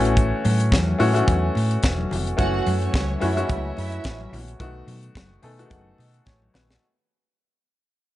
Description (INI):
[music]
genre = disco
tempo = 108 BPM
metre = 4/4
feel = swing 56% on 16ths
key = unclear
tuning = A4 = 440 Hz
[part]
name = clear grand piano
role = accompaniment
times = 0.0-6.8 s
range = C#3 to G#5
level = -24 LUFS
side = left 2 dB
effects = none
[part]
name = hollow-body short-scale fingered electric bass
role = bass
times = 0.0-6.8 s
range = E1 to B2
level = -24 LUFS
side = equal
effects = none
[part]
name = tight funk drum kit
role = drums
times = 0.1-6.8 s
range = hi-hat, kick drum, snare drum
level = -24 LUFS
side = equal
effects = none
[part]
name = congas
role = percussion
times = 0.2-6.7 s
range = none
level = -31 LUFS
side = left 3 dB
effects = none
[part]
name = dark studio string section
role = second line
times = 2.4-4.3 s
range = C#4 to F#5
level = -30 LUFS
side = right 6 dB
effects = none
[sound]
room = small room reverb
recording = dark, warm production, nothing above 10.8 kHz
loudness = -19 LUFS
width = side -15 dB against mid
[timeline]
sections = 0.0-6.8 A section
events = fade-out 0.0-6.8; grand piano fill 5.2-6.8; drum fill 6.3-6.8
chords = 0.0 A6; 2.4 F#m7; 4.6 B7